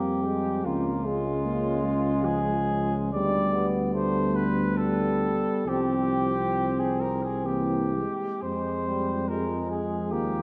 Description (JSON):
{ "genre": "classical, hymn-like piece for brass band", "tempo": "58-76 BPM", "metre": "3/4", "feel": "rubato", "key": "F minor", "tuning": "A4 = 439 Hz", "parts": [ { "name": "clear flugelhorn", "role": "melody", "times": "0.0-10.4 s", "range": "F4 to D5", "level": "-32 LUFS", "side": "equal", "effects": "none" }, { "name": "mellow French horn section", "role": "second line", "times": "0.0-10.4 s", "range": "Ab3 to Db4", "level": "-35 LUFS", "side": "equal", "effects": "none" }, { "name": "bright trombone", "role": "accompaniment", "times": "0.0-10.4 s", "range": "G3 to C4", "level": "-34 LUFS", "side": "equal", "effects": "none" }, { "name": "dark euphonium", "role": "accompaniment", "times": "0.0-10.4 s", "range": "E3 to Bb3", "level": "-34 LUFS", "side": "equal", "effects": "none" }, { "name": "dark tuba", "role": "bass", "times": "0.0-10.4 s", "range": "C2 to F2", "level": "-33 LUFS", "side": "equal", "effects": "none" } ], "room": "wet concert hall reverb, RT60 1.9 s", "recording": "dark, warm production", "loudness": "-27 LUFS", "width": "mono", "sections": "0.0-10.4 A section", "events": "none", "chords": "0.0 Fm; 0.7 Db; 3.1 G/D; 5.7 Csus4; 7.5 C; 8.4 Fm" }